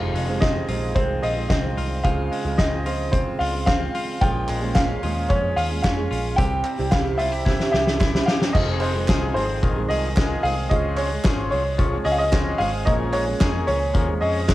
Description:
jangly indie pop; 111 BPM; 4/4; straight; F minor; A4 = 443 Hz
warm upright piano; melody; 0.0-14.5 s; C5 to G5; -26 LUFS; equal; cassette tape
fingerpicked steel-string acoustic guitar; accompaniment; 0.0-14.5 s; F2 to Ab4; -29 LUFS; right 5 dB; cassette tape
direct-recorded clean electric guitar; arpeggios; 0.0-14.5 s; F2 to Ab4; -30 LUFS; left 2 dB; cassette tape, analog delay
vintage muted picked electric bass; bass; 0.0-14.5 s; F1 to F2; -27 LUFS; equal
loose indie drum kit; drums; 0.2-14.5 s; crash cymbal, hi-hat, kick drum, snare drum; -23 LUFS; equal
group handclap; percussion; 4.5-14.5 s; -39 LUFS; right 5 dB
combo organ; accompaniment; 8.5-14.5 s; Db4 to Db5; -31 LUFS; left 4 dB; cassette tape
little or no reverb; home recording on cassette; -19 LUFS; side -16 dB against mid
0.0-8.5 A section; 8.5-14.5 B section
drum fill 7.5-8.5
0.0 Fm7; 2.0 Dbmaj7; 4.2 Bbm7; 6.4 C; 8.5 Fm7; 10.7 Dbmaj7; 12.9 Bbm7

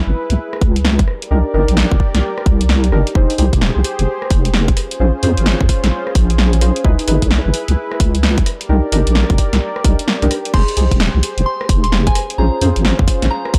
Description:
UK garage, two-step garage; 130 BPM; 4/4; swing 63% on 16ths; F minor; A4 = 440 Hz
warm analog pad; sustained chords; 0.0-13.6 s; Db4 to D5; -27 LUFS; equal; chorus, sidechain pumping
deep soft wobble bass; bass; 0.1-13.6 s; Eb1 to F2; -17 LUFS; equal; chorus
punchy analog drum machine; drums; 0.3-13.6 s; crash cymbal, hi-hat, rim click, snare drum; -23 LUFS; equal
electronic kick drum; drums; 0.6-13.6 s; -17 LUFS; equal
deep mellow chord stab; stabs; 1.3-13.6 s; Db4 to C5; -24 LUFS; equal; chorus, analog delay
soft synth bell; melody; 10.5-13.5 s; Ab5 to C6; -26 LUFS; equal; chorus, analog delay
digital ambience; dry, gritty hardware recording; -15 LUFS; mono
0.0-13.6 A section
0.0 Dbm7; 1.1 Cm9; 3.2 Fm9; 4.8 Bbm9; 6.8 Dbm9; 8.5 Cm9; 10.5 Fm9; 12.2 Bbm9

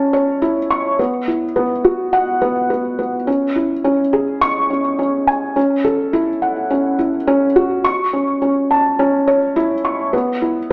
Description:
electronica; 105 BPM; 4/4; straight; C# minor; A4 = 440 Hz
felt-muted upright piano; solo; 0.0-10.7 s; B3 to C#6; -17 LUFS; equal
moderate echo chamber reverb, RT60 1.4 s; small speaker sound; -17 LUFS; mono
0.0-3.3 A section; 3.3-10.7 B section
build-up 3.3-10.7

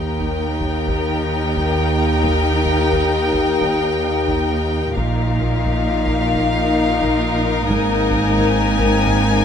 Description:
cinematic, suspense film score; 110 BPM; 5/4; straight; A4 = 441 Hz
rich chamber violin section; melody; 0.0-9.4 s; F5 to Ab5; -24 LUFS; left 3 dB
rich chamber violin section; second line; 0.0-9.4 s; Bb4; -25 LUFS; left 5 dB
warm chamber viola section; accompaniment; 0.0-9.4 s; Eb4; -24 LUFS; right 2 dB
mellow French horn section; sustained chords; 0.0-9.4 s; Bb3 to G4; -22 LUFS; left 4 dB
dark chamber double bass section; bass; 0.0-9.4 s; Ab1 to Eb2; -26 LUFS; right 5 dB
rich chamber cello section; bass; 0.0-9.4 s; Eb2 to Bb2; -24 LUFS; right 1 dB
punchy sub bass; drone; 0.0-9.4 s; Ab1 to Eb2; -25 LUFS; right 1 dB
taiko ensemble; drums; 0.2-9.4 s; -29 LUFS; equal
light reverb; close, detailed microphones; -16 LUFS; side -8 dB against mid
0.0-9.4 A section
0.0 Eb; 5.0 Bbsus4; 7.7 Abadd9

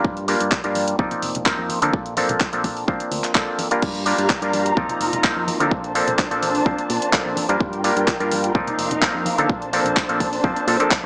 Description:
filtered disco house; 127 BPM; 4/4; straight; Bb major; A4 = 440 Hz
auto-wah clav; accompaniment; 0.0-11.1 s; F3 to D5; -21 LUFS; equal; phaser, sidechain pumping, low-pass filter
fingered electric bass with an envelope filter; bass; 0.0-11.1 s; F1 to D3; -28 LUFS; equal; tube saturation, sidechain pumping, low-pass filter
electronic kick drum; drums; 0.0-11.0 s; -23 LUFS; equal
tambourine and congas; percussion; 0.1-11.0 s; -33 LUFS; equal; sidechain pumping on perc, low-pass filter on perc
house drum kit; drums; 0.2-11.0 s; crash cymbal, handclaps, hi-hat; -24 LUFS; equal; sidechain pumping on hats, sidechain pumping on cymbals
warm studio string section; sustained chords; 3.8-11.1 s; D4 to Bb5; -24 LUFS; equal; sidechain pumping, low-pass filter
little or no reverb; dry, gritty hardware recording, small speaker sound; -18 LUFS; side -33 dB against mid
0.0-11.1 A section
0.0 Gm7; 1.0 F7sus4; 1.9 Bbmaj9; 3.8 Gm7; 4.8 F7sus4; 5.7 Bbmaj9; 7.6 Gm7; 8.5 F7sus4; 9.5 Bbmaj9

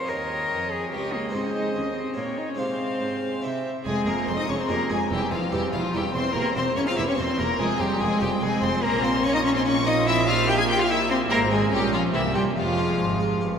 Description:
classical, baroque-style concerto movement with solo episodes; 145 BPM; 3/4; straight; F minor; A4 = 440 Hz
rich cello; melody; 0.0-13.4 s; E3 to C5; -26 LUFS; left 1 dB
rich chamber violin section; melody; 0.0-13.4 s; E5 to Ab6; -30 LUFS; left 4 dB
rich chamber violin section; second line; 0.0-13.4 s; E4 to Ab5; -29 LUFS; left 2 dB
harpsichord; accompaniment; 0.0-13.6 s; Db2 to C5; -32 LUFS; right 2 dB
warm chamber viola section; accompaniment; 0.0-13.6 s; Ab3 to Db5; -33 LUFS; equal
warm chamber cello section; bass; 0.0-13.6 s; Db2 to C3; -31 LUFS; right 4 dB
rich chamber double bass section; bass; 3.9-13.6 s; E1 to C2; -32 LUFS; right 4 dB
wet cathedral reverb, RT60 4.4 s; -21 LUFS; side -7 dB against mid
0.0-3.9 A section; 3.9-13.6 B section
0.1 Eb7; 1.3 Ab; 2.2 Gdim/Bb; 2.6 Fm/C; 3.4 C; 3.9 Fm; 5.1 C/E; 6.4 C7/E; 7.6 Fm; 8.8 Bbm; 10.1 C5/Bb; 11.3 Fm/Ab; 11.7 Gdim/Bb; 12.1 C7; 12.6 Fm

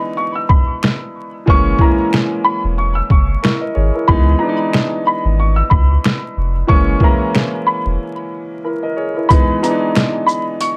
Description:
hip hop, boom-bap hip-hop; 92 BPM; 4/4; swing 56% on 16ths; A4 = 444 Hz
warm concert grand piano; accompaniment; 0.0-10.8 s; E3 to D#5; -22 LUFS; equal; cassette tape, high-pass filter, low-pass filter
warm upright piano; melody; 0.2-10.8 s; A#5 to E6; -21 LUFS; equal; high-pass filter, low-pass filter, tape echo
trip hop sampler-style drum kit; drums; 0.5-10.8 s; hi-hat, kick drum, shaker, snare drum; -16 LUFS; equal
finger snap; percussion; 0.8-10.1 s; -30 LUFS; equal
warm sub bass; bass; 1.5-8.0 s; E1 to C#2; -18 LUFS; equal
light reverb; vinyl crackle; -15 LUFS; mono
0.0-10.8 A section
break 0.0-9.3
0.0 Emaj7#11; 1.5 F#7; 4.1 C#m9; 6.7 F#7 (rootless); 9.3 Emaj7

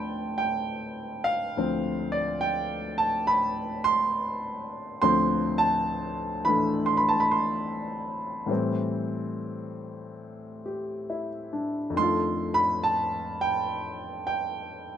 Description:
solo jazz; 69 BPM; 4/4; swing 66% on 8ths; A4 = 440 Hz
warm upright piano; solo; 0.0-15.0 s; D2 to C6; -25 LUFS; equal
moderate studio ambience, RT60 0.5 s; minimal, uncompressed stereo recording; -25 LUFS; side -9 dB against mid
0.0-15.0 A section
0.0 Dm7; 8.5 Am7; 12.0 F7

